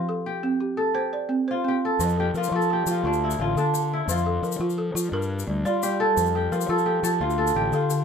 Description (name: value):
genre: west african traditional, West African string and xylophone music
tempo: 115 BPM (dotted quarters)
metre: 12/8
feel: straight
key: F major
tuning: A4 = 439 Hz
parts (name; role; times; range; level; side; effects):
- kora; melody; 0.0-8.0 s; D4 to A4; -24 LUFS; equal; none
- balafon; arpeggios; 0.0-8.0 s; D3 to D5; -27 LUFS; right 2 dB; none
- fuzz fingered electric bass; bass; 2.0-8.0 s; A1 to G3; -27 LUFS; left 2 dB; overdrive
- egg shaker; percussion; 2.0-8.0 s; none; -34 LUFS; left 10 dB; none
room: moderate small room reverb, RT60 0.5 s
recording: none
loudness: -22 LUFS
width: side -6 dB against mid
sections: 0.0-2.0 A section; 2.0-8.0 B section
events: none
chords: 0.0 F; 1.0 C5; 2.0 F; 3.0 Dm; 4.1 F; 5.1 Gm; 6.2 F; 7.2 Dm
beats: 0.43 0.95 1.48 | 2.00 2.52 3.04 3.56 | 4.08 4.61 5.13 5.65 | 6.17 6.69 7.21 7.73